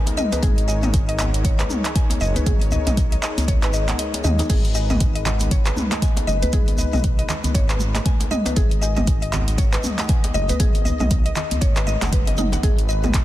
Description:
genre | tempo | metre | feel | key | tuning
afro house | 118 BPM | 4/4 | swing 59% on 16ths | G# minor | A4 = 442 Hz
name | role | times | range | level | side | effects
warm analog pad | sustained chords | 0.0-13.2 s | G#3 to D#5 | -32 LUFS | left 2 dB | chorus, vintage 12-bit sampler grit, sidechain pumping
mallet-like synth pluck | arpeggios | 0.0-13.1 s | D#4 to G#5 | -28 LUFS | left 2 dB | chorus, cassette tape, sidechain pumping, ping-pong delay
deep house drum kit | drums | 0.1-13.2 s | crash cymbal, handclaps, hi-hat, toms | -26 LUFS | left 1 dB | overdrive
djembe | percussion | 0.1-13.1 s | none | -28 LUFS | left 1 dB | none
kalimba | melody | 0.2-13.2 s | D#5 to G#5 | -32 LUFS | right 1 dB | ping-pong delay
shekere | percussion | 0.2-13.2 s | none | -34 LUFS | right 1 dB | none
round analog bass | bass | 0.4-13.2 s | F#1 to D#2 | -23 LUFS | equal | tube saturation, sidechain pumping
electronic kick drum | drums | 0.4-13.2 s | none | -19 LUFS | equal | none
congas | percussion | 4.5-13.1 s | none | -30 LUFS | right 4 dB | none
room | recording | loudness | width
small room ambience | dense, heavily limited modern master | -17 LUFS | side -14 dB against mid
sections
0.0-13.2 A section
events
kick drops out 4.0-4.5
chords
0.0 G#m7

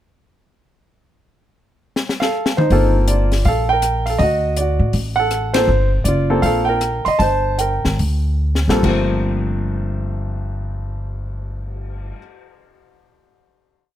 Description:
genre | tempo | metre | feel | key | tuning
jazz piano trio | 137-162 BPM | 4/4 | swing 64% on 8ths | G minor | A4 = 436 Hz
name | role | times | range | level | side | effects
compact cocktail drum kit | drums | 2.0-12.2 s | crash cymbal, cymbal swell, hi-hat, kick drum, ride cymbal, rim click, snare drum, toms | -23 LUFS | left 2 dB | none
warm baby grand piano | melody | 2.2-12.2 s | G2 to C6 | -18 LUFS | right 1 dB | plate reverb
upright bass | bass | 2.7-12.1 s | F#1 to A2 | -19 LUFS | equal | none
room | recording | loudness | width
light reverb | none | -16 LUFS | side -11 dB against mid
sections
1.2-2.7 pickup bar; 2.7-8.8 A section; 8.8-12.3 final chord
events
drum fill 2.0-2.7, 8.4-8.8; band accent 5.5; slowing down 5.7-8.8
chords
1.2 F; 2.7 Gm11; 4.2 D(b9); 5.7 Gm11

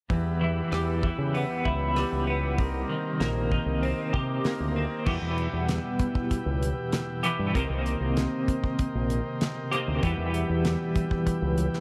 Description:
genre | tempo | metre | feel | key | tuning
psychedelic rock | 97 BPM | 4/4 | straight | unclear | A4 = 442 Hz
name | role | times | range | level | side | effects
overdriven combo organ | sustained chords | 0.1-11.8 s | G3 to G5 | -39 LUFS | equal | none
twelve-string electric guitar | riff | 0.1-11.8 s | E2 to G4 | -31 LUFS | equal | tremolo, double-tracked, analog delay
growling fingered electric bass | bass | 0.1-11.7 s | Bb1 to C#3 | -31 LUFS | equal | overdrive
damped 70s drum kit | drums | 0.1-11.8 s | crash cymbal, hi-hat, kick drum, rim click, snare drum | -32 LUFS | equal | none
room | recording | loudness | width
light reverb | echo-heavy mix | -27 LUFS | mono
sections
0.1-5.1 A section; 5.1-11.8 B section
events
none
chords
0.1 Em; 2.6 Cm7; 5.1 Em; 7.5 Cm7; 10.0 Em

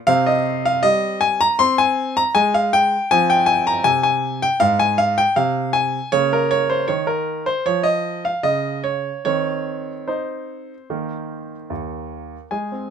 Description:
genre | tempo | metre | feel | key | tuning
classical-period piano sonatina | 72-81 BPM | 4/4 | rubato | Ab major | A4 = 440 Hz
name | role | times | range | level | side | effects
clear baby grand piano | solo | 0.0-12.9 s | Eb2 to C6 | -17 LUFS | equal | none
room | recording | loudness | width
light reverb | minimal, uncompressed stereo recording | -17 LUFS | side -7 dB against mid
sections
0.0-12.5 A section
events
none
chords
0.1 Ab/C; 3.1 Fm; 6.1 Bbm/Db; 9.2 Cm/Eb; 10.9 Eb5

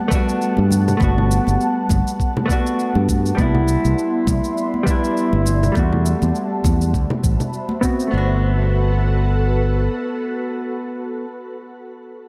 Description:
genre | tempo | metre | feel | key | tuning
sunset chillout | 101 BPM | 4/4 | swing 56% on 16ths | G major | A4 = 440 Hz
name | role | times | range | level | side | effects
vintage hollow-body jazz guitar | accompaniment | 0.0-11.3 s | G3 to F#4 | -25 LUFS | equal | low-pass filter, tape echo, shimmer reverb
ethereal airy pad | sustained chords | 0.0-11.3 s | G3 to C6 | -27 LUFS | equal | ensemble chorus, built-in reverb, shimmer reverb
electronic kick drum | drums | 0.1-8.0 s | none | -23 LUFS | equal | none
shaker and congas | drums | 0.1-8.1 s | none | -29 LUFS | equal | none
congas | percussion | 0.1-7.8 s | none | -31 LUFS | equal | none
fingered electric bass | bass | 0.6-9.9 s | G1 to G2 | -20 LUFS | equal | none
room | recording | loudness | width
moderate recital hall reverb, RT60 1.5 s, digital ambience | none | -19 LUFS | mono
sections
0.0-8.1 A section; 8.1-10.5 B section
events
filter sweep on hollow-body jazz guitar 0.0-8.1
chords
0.0 Gmaj9; 3.4 Cmaj9; 5.8 Em11; 6.9 D13 (rootless); 8.1 Gmaj9

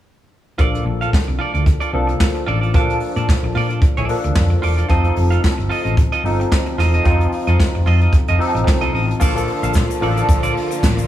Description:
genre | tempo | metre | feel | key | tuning
disco | 111 BPM | 4/4 | swing 56% on 16ths | Bb major | A4 = 439 Hz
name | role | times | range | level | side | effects
barky tine electric piano | accompaniment | 0.6-11.1 s | F3 to A4 | -22 LUFS | left 1 dB | overdrive, ensemble chorus
clean electric guitar | accompaniment | 0.6-11.0 s | F4 to F5 | -24 LUFS | right 5 dB | wide subtle chorus
hollow-body short-scale fingered electric bass | bass | 0.6-11.0 s | E1 to Bb2 | -18 LUFS | equal | none
jazz brush drum kit | drums | 0.6-11.1 s | crash cymbal, hi-hat, kick drum, snare drum | -17 LUFS | equal | none
clear studio string section | sustained chords | 9.2-11.1 s | D3 to A4 | -26 LUFS | right 2 dB | none
egg shaker | percussion | 9.2-11.1 s | none | -35 LUFS | left 13 dB | none
room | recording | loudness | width
little or no reverb | small room ambience | -15 LUFS | side -12 dB against mid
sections
0.6-9.2 A section; 9.2-11.1 B section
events
none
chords
0.6 Bbmaj7; 4.9 F7; 9.2 Bbmaj7

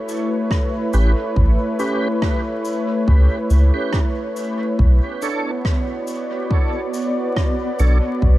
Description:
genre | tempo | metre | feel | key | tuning
ambient dub | 70 BPM | 4/4 | swing 55% on 16ths | unclear | A4 = 443 Hz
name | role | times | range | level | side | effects
warm analog pad | sustained chords | 0.0-8.4 s | A3 to D5 | -22 LUFS | equal | chorus
cabasa and rim click | drums | 0.1-8.0 s | none | -32 LUFS | right 1 dB | dub echo
electronic kick drum | drums | 0.5-8.4 s | none | -19 LUFS | equal | none
tonewheel organ | stabs | 0.9-8.0 s | C#4 to C#5 | -28 LUFS | right 2 dB | overdrive, chorus vibrato, slow rotary speaker, dub echo
soft dub sub bass | bass | 0.9-8.4 s | A1 to C#2 | -13 LUFS | equal | none
wind-like tuned noise texture | texture | 6.0-8.4 s | B3 to B4 | -32 LUFS | left 2 dB | built-in reverb
room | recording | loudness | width
small room ambience | vinyl crackle | -17 LUFS | side -16 dB against mid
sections
0.0-8.4 A section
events
none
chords
0.0 A9; 4.8 Bm9

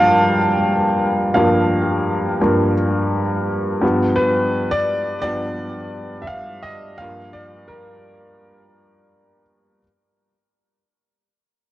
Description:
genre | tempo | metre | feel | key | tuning
hip hop | 85 BPM | 4/4 | swing 58% on 16ths | G minor | A4 = 444 Hz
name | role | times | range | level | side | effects
clear upright piano | solo | 0.0-9.8 s | G2 to A5 | -17 LUFS | equal | cassette tape, tape echo
room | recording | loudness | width
light reverb, studio reverb | dry, gritty hardware recording, cassette tape | -16 LUFS | side -15 dB against mid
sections
0.0-9.8 A section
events
fade-out 0.0-9.8; upright piano solo 0.0-9.8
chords
0.0 Gm7; 3.8 G7; 7.0 Gm7

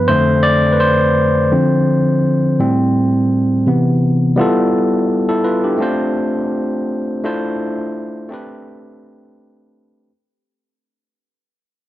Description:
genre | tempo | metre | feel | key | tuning
soul | 84 BPM | 4/4 | swing 54% on 16ths | unclear | A4 = 440 Hz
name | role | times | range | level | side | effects
overdriven tine electric piano | solo | 0.0-10.1 s | F2 to D5 | -13 LUFS | equal | none
room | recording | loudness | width
light reverb, digital ambience | none | -13 LUFS | side -14 dB against mid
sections
0.0-4.4 A section; 4.4-10.1 B section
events
tine electric piano solo 0.0-4.4; fade-out 4.4-10.1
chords
0.1 F6; 1.5 Dm7; 2.6 Am7; 3.7 Cmaj7; 4.4 G13; 5.8 F6; 7.2 Dm9; 8.3 Am11

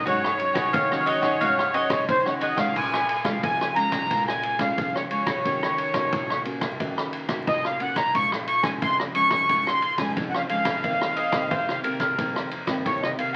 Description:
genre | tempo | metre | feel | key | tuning
samba and choro | 89 BPM | 4/4 | straight | Bb minor | A4 = 439 Hz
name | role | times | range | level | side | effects
accordion | melody | 0.0-13.4 s | C5 to Db6 | -26 LUFS | equal | light tremolo tuning
cavaquinho | accompaniment | 0.0-2.7 s | Gb4 to Gb5 | -32 LUFS | equal | none
nylon-string guitar | accompaniment | 0.0-13.4 s | F2 to Gb4 | -34 LUFS | equal | none
swinging big-band drum kit | drums | 0.1-13.3 s | crash cymbal, kick drum, ride cymbal, rim click | -30 LUFS | equal | none
bowl-back mandolin | second line | 0.7-2.7, 11.2-12.6 s | Bb4 to F5 | -29 LUFS | equal | none
room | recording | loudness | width
moderate studio ambience, RT60 0.5 s | very old 78 rpm record, vinyl crackle | -24 LUFS | mono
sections
0.0-2.8 A section; 2.8-13.4 B section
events
none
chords
0.1 Ab7sus4; 2.8 Bbm7; 5.5 Ebm7; 8.1 Bbm7; 10.8 F7sus4

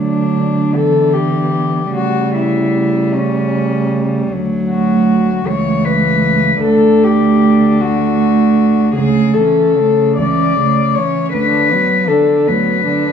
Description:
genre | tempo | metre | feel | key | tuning
classical, lyrical piece for cello ensemble | 51 BPM (dotted quarters) | 6/8 | rubato | D major, A major from 9.0 s | A4 = 440 Hz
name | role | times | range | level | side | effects
warm cello | melody | 0.0-13.1 s | C#4 to D5 | -15 LUFS | left 5 dB | none
warm cello | second line | 0.0-13.1 s | A3 to D4 | -18 LUFS | right 8 dB | none
rich cello | accompaniment | 0.0-13.1 s | C#3 to G3 | -19 LUFS | left 1 dB | none
dark cello | bass | 0.0-13.1 s | C#2 to D3 | -17 LUFS | right 1 dB | none
room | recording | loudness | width
wet recital hall reverb, RT60 1.7 s | none | -11 LUFS | side -7 dB against mid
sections
0.0-13.1 A section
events
none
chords
0.0 D; 0.7 Em7/D; 1.9 A7/C#; 4.3 D; 5.5 A/C#; 6.6 D; 9.0 A/C#; 11.3 Bm/D

